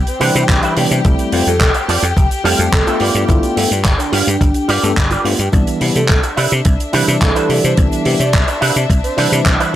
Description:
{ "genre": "nu-disco, nu disco", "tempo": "107 BPM", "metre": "4/4", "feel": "straight", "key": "C major", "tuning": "A4 = 438 Hz", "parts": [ { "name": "dark chamber string section", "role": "sustained chords", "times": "0.0-9.8 s", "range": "D4 to G5", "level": "-23 LUFS", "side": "left 4 dB", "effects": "sidechain pumping" }, { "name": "soft octave-layered synth lead", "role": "melody", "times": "0.1-9.5 s", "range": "D4 to D5", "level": "-23 LUFS", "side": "right 1 dB", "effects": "chorus, phaser, tape echo" }, { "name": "damped 70s drum kit", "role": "drums", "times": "0.1-9.7 s", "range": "handclaps, hi-hat, shaker", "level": "-19 LUFS", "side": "right 1 dB", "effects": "none" }, { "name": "tine electric piano", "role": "accompaniment", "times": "0.2-9.8 s", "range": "E3 to A4", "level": "-20 LUFS", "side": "equal", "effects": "medium stereo tremolo" }, { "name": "electric guitar with an envelope filter", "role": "riff", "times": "0.2-9.7 s", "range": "E4 to F5", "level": "-21 LUFS", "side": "right 3 dB", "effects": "ensemble chorus" }, { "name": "dry thumbed slap bass", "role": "bass", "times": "0.2-9.5 s", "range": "F1 to C3", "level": "-17 LUFS", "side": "equal", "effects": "sidechain pumping" }, { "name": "electronic kick drum", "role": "drums", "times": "0.5-9.6 s", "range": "none", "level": "-14 LUFS", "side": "equal", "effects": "none" } ], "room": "little or no reverb", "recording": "dry, gritty hardware recording", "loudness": "-12 LUFS", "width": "side -12 dB against mid", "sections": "0.0-9.8 A section", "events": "none", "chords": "0.0 Cmaj9; 1.0 Fmaj9; 3.0 G7; 5.5 Cmaj9" }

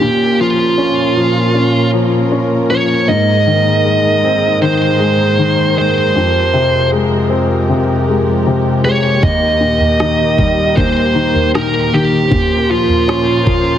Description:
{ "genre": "pop ballad", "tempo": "78 BPM", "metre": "4/4", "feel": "straight", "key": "Ab major", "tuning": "A4 = 440 Hz", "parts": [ { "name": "high-gain lead guitar", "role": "melody", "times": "0.0-13.8 s", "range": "F4 to Eb5", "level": "-15 LUFS", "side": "right 3 dB", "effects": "distortion" }, { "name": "clear baby grand piano", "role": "accompaniment", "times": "0.0-13.8 s", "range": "Eb2 to Db4", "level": "-15 LUFS", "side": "left 3 dB", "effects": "none" }, { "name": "dark studio string section", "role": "sustained chords", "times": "0.0-13.8 s", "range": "Eb2 to C5", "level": "-18 LUFS", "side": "right 1 dB", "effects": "none" }, { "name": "smooth R&B drum kit", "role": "drums", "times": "9.2-13.6 s", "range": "kick drum, rim click, toms", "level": "-17 LUFS", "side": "right 1 dB", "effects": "none" } ], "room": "moderate concert hall reverb, RT60 2.3 s", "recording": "heavily compressed radio sound, multiband compression", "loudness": "-11 LUFS", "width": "side -10 dB against mid", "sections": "0.0-13.8 A section", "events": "none", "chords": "0.0 Bbm; 3.1 Abadd9; 6.2 Fmadd9; 9.2 Eb; 12.3 Bbmadd9" }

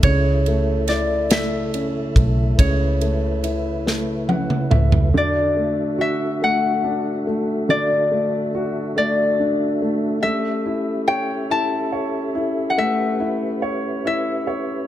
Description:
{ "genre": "six-eight pop ballad", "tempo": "47 BPM (dotted quarters)", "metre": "6/8", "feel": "straight", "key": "D major", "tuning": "A4 = 441 Hz", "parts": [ { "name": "concert harp", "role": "melody", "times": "0.0-14.9 s", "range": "C#5 to A5", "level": "-22 LUFS", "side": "left 2 dB", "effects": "none" }, { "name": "warm concert grand piano", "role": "accompaniment", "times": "0.0-14.9 s", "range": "C#3 to F#5", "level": "-24 LUFS", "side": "equal", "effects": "none" }, { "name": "mellow tonewheel organ", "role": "sustained chords", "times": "0.0-14.9 s", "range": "C#3 to E5", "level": "-27 LUFS", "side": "equal", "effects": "chorus vibrato, stopped rotary speaker" }, { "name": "vintage muted fingered electric bass", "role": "bass", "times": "0.0-5.1 s", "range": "B1 to C#2", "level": "-20 LUFS", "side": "equal", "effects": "none" }, { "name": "modern studio drum kit", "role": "drums", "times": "0.0-5.1 s", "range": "kick drum, ride cymbal, snare drum, toms", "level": "-19 LUFS", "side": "equal", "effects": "none" } ], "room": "studio ambience", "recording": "none", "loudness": "-18 LUFS", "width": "side -12 dB against mid", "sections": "0.0-5.1 A section; 5.1-14.9 A section", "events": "drum fill 3.9-5.1; grand piano fill 3.9-5.1", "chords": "0.0 A; 5.1 Dadd9; 10.2 A7" }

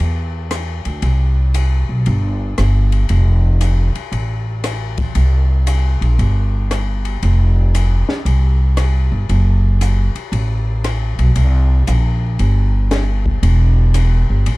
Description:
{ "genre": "jazz, small-group swing and bop", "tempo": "116 BPM", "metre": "4/4", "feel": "swing 67% on 8ths", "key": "C mixolydian", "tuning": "A4 = 440 Hz", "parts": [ { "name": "upright bass", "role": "bass", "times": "0.0-14.6 s", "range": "E1 to E2", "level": "-13 LUFS", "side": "equal", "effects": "none" }, { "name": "compact cocktail drum kit", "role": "drums", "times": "0.5-14.6 s", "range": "hi-hat, kick drum, ride cymbal, rim click, snare drum", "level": "-26 LUFS", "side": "left 3 dB", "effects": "none" } ], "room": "little or no reverb", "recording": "dark, warm production", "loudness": "-13 LUFS", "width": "side -22 dB against mid", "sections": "0.0-14.6 A section", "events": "none", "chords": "none" }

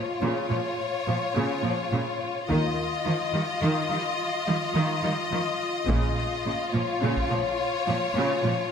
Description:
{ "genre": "cinematic, epic orchestral film score", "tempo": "70 BPM (dotted quarters)", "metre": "12/8", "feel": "straight", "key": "Bb minor", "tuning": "A4 = 440 Hz", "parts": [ { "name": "clear studio violin section", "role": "melody", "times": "0.0-8.7 s", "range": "Db5 to Eb5", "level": "-30 LUFS", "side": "left 6 dB", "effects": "none" }, { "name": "warm symphonic violin section", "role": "second line", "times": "0.0-8.7 s", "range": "F4", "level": "-30 LUFS", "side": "left 2 dB", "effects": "none" }, { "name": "clear symphonic viola section", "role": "accompaniment", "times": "0.2-8.5 s", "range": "Db3 to G3", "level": "-32 LUFS", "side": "right 1 dB", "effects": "none" }, { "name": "rich symphonic cello section", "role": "bass", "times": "0.2-8.5 s", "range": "Bb2 to Eb3", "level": "-30 LUFS", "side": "right 3 dB", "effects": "none" }, { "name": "clear symphonic double bass section", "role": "bass", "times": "2.5-6.2 s", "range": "Bb1 to Eb2", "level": "-30 LUFS", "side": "right 2 dB", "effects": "none" }, { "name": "taiko ensemble", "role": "drums", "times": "5.9-7.4 s", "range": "none", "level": "-30 LUFS", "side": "equal", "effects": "none" } ], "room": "wet scoring stage reverb, RT60 1.6 s", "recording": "none", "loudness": "-24 LUFS", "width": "side -7 dB against mid", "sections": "0.0-8.7 A section", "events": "build-up 0.0-8.7", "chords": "0.0 Bbm; 2.5 Ebsus2; 5.9 Bbm" }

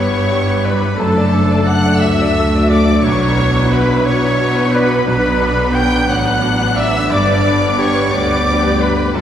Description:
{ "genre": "cinematic", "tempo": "59 BPM (dotted quarters)", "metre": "6/8", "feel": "rubato", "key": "unclear", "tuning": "A4 = 440 Hz", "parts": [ { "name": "dark symphonic violin section", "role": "melody", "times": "0.0-9.2 s", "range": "A5 to G6", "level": "-22 LUFS", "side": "left 2 dB", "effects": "none" }, { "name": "clear clarinet", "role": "second line", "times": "0.0-9.2 s", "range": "A4 to G5", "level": "-23 LUFS", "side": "left 1 dB", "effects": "none" }, { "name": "clear oboe", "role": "second line", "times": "0.0-9.2 s", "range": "A4 to G5", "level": "-24 LUFS", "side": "equal", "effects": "none" }, { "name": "mellow hollow concert flute", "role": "second line", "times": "0.0-9.2 s", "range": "A4 to G5", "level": "-24 LUFS", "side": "equal", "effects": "none" }, { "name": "rich studio violin section", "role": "second line", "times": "0.0-9.2 s", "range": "A4 to G5", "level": "-25 LUFS", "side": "left 2 dB", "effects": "none" }, { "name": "bright baby grand piano", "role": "accompaniment", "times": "0.0-9.2 s", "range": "B1 to E5", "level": "-21 LUFS", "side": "left 1 dB", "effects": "none" }, { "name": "rich symphonic viola section", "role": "accompaniment", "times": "0.0-9.2 s", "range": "F#3 to G4", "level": "-22 LUFS", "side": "equal", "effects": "none" }, { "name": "mellow French horn section", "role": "sustained chords", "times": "0.0-9.2 s", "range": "A3 to D4", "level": "-20 LUFS", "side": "left 1 dB", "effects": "none" }, { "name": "rich studio double bass section", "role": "bass", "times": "0.0-9.2 s", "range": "F#1 to B2", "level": "-20 LUFS", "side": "right 1 dB", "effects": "none" }, { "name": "rich symphonic cello section", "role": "bass", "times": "0.0-9.2 s", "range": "D2 to B3", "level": "-20 LUFS", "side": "right 1 dB", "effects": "none" } ], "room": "wet concert hall reverb, RT60 2.1 s", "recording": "heard from further back in the room", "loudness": "-12 LUFS", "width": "side -10 dB against mid", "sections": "0.0-9.2 A section", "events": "none", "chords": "0.0 G; 1.0 D/F#; 3.0 Bm; 7.1 G" }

